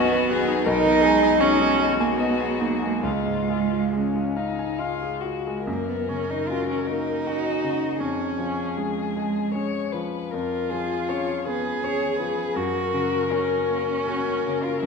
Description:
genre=classical, slow romantic movement for piano trio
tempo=66-82 BPM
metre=3/4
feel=rubato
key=F# major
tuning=A4 = 441 Hz
part: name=dark violin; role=melody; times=0.0-14.9 s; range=C#4 to C#5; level=-28 LUFS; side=left 8 dB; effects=none
part: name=dark cello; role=second line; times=0.0-14.9 s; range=G#3 to G#4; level=-24 LUFS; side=right 4 dB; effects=none
part: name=clear concert grand piano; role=accompaniment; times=0.0-14.9 s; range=B1 to G#5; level=-27 LUFS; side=left 2 dB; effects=none
room=wet concert hall reverb, RT60 2.0 s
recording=minimal, uncompressed stereo recording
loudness=-21 LUFS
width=side -4 dB against mid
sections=0.0-5.7 A section; 5.7-14.9 B section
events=none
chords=0.0 B; 0.7 G#m/B; 3.0 C#; 5.7 F#; 8.0 C#/E#; 10.3 C#7/E#; 12.6 F#

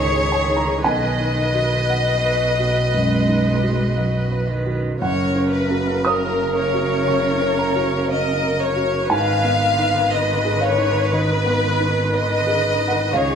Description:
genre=neoclassical piano and strings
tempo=59 BPM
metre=4/4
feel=rubato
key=unclear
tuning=A4 = 440 Hz
part: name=rich chamber violin section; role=melody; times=0.0-13.4 s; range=A#4 to E#5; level=-21 LUFS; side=left 3 dB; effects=none
part: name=warm cello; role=second line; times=0.0-13.4 s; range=B2 to G#3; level=-27 LUFS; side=right 4 dB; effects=none
part: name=felt-muted upright piano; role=accompaniment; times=0.0-13.4 s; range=B1 to D#6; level=-23 LUFS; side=right 2 dB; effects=none
part: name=rich viola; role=accompaniment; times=0.0-13.4 s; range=G#4 to B4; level=-26 LUFS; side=right 2 dB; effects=none
part: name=rich double bass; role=bass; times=0.0-13.4 s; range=F#1 to C#2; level=-24 LUFS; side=equal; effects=none
room=wet recital hall reverb, RT60 1.3 s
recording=recorded in a church or concert hall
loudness=-17 LUFS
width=side -7 dB against mid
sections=0.0-13.4 A section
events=none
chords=0.0 C#add9; 0.8 B; 5.0 F#; 9.1 G#m

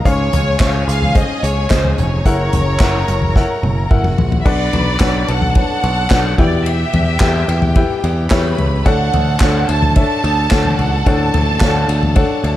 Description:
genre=piano-driven pop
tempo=109 BPM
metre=4/4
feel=straight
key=D major from 4.5 s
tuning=A4 = 441 Hz
part: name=rich studio violin section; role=second line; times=0.0-12.6 s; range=Gb4 to B5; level=-25 LUFS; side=left 1 dB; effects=none
part: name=clear upright piano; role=accompaniment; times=0.0-12.6 s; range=Ab2 to G5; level=-20 LUFS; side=left 3 dB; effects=none
part: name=rich studio violin section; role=melody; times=0.1-12.2 s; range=C5 to A5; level=-21 LUFS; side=right 1 dB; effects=none
part: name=picked electric bass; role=bass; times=0.1-12.6 s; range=F1 to E2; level=-17 LUFS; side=equal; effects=none
part: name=unplugged drum kit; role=drums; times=0.1-12.6 s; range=crash cymbal, handclaps, hi-hat, kick drum, ride cymbal, snare drum, toms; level=-17 LUFS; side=equal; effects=none
room=studio ambience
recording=dark, warm production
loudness=-12 LUFS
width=side -14 dB against mid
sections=0.0-4.5 A section; 4.5-12.6 A section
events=drum fill 3.4-4.5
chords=0.1 Dbmaj7; 2.3 Gb7; 4.5 Bmadd9; 6.4 Em; 8.9 Dmaj7

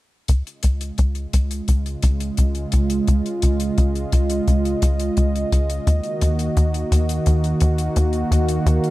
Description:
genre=synthwave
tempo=86 BPM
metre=4/4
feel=straight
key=Db major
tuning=A4 = 440 Hz
part: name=warm analog pad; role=sustained chords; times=0.3-8.9 s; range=Db3 to F5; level=-22 LUFS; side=right 1 dB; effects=chorus
part: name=tight sequencer bass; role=bass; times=0.3-8.8 s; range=Db2 to Eb2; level=-18 LUFS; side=equal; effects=none
part: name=hi-hat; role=drums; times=0.3-8.9 s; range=none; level=-33 LUFS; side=left 6 dB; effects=none
room=moderate plate reverb, RT60 1.8 s, studio ambience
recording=bright 1980s-style digital production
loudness=-18 LUFS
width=side -17 dB against mid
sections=0.3-8.9 A section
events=filter sweep on analog synth bass 0.3-8.9; filter sweep on analog synth pad 0.3-8.9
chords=0.3 Dbadd9; 5.9 Ebm

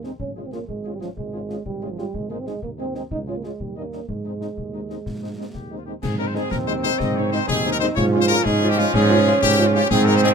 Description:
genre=military-style march for wind band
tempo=124 BPM (dotted quarters)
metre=6/8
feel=straight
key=Ab major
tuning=A4 = 440 Hz
part: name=warm trumpet section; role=melody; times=0.0-10.3 s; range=F4 to Eb5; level=-23 LUFS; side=left 6 dB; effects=none
part: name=warm euphonium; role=second line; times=0.0-10.3 s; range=F3 to F4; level=-25 LUFS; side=right 3 dB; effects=none
part: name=warm French horn section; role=accompaniment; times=0.0-10.3 s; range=G3 to F4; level=-28 LUFS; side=left 2 dB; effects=none
part: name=warm tuba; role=bass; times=0.0-10.3 s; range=Ab1 to Ab2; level=-24 LUFS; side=right 3 dB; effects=none
part: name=concert snare drum, concert bass drum and clash cymbals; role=drums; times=0.0-10.3 s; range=none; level=-30 LUFS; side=left 2 dB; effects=none
part: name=bright trombone section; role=sustained chords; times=6.0-10.3 s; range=Eb3 to Db4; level=-27 LUFS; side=equal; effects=none
room=light reverb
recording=close, detailed microphones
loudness=-19 LUFS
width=side -6 dB against mid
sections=0.0-6.0 A section; 6.0-10.3 A section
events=none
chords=0.2 Db/Ab; 2.1 Ab; 3.1 Db; 3.6 Eb7; 4.1 Ab; 8.0 Db/Ab

